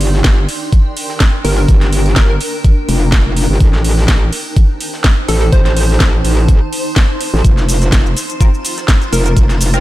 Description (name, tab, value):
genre	bass house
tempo	125 BPM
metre	4/4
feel	swing 54% on 16ths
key	G minor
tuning	A4 = 440 Hz
part	metallic wobble bass	bass	0.0-9.8 s	F1 to A1	-13 LUFS	equal	distortion, chorus, tube saturation, sidechain pumping
part	breakbeat sampler-style drum kit	drums	0.0-9.8 s	hi-hat, snare drum	-30 LUFS	right 2 dB	none
part	garage drum kit	drums	0.0-9.8 s	cabasa, hi-hat, snare drum	-19 LUFS	equal	none
part	granular cloud pad	texture	0.0-9.8 s	D4 to C6	-22 LUFS	equal	built-in reverb, sidechain pumping
part	electronic kick drum	drums	0.2-9.5 s	none	-10 LUFS	equal	none
part	plucky unison lead	melody	1.4-2.4, 5.3-9.3 s	A4 to C5	-22 LUFS	equal	dub echo
part	band-passed chord stab	stabs	8.4-9.8 s	C4 to Bb4	-23 LUFS	left 1 dB	phaser, analog chorus, sidechain pumping, dub echo
room	digital ambience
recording	none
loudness	-10 LUFS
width	side -16 dB against mid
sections	0.0-9.8 A section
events	none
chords	0.0 Gm; 3.6 Adim; 7.4 Fsus4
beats	0.25 0.73 1.21 | 1.69 2.17 2.65 3.13 | 3.61 4.09 4.57 5.05 | 5.53 6.01 6.49 6.97 | 7.45 7.93 8.41 8.89 | 9.37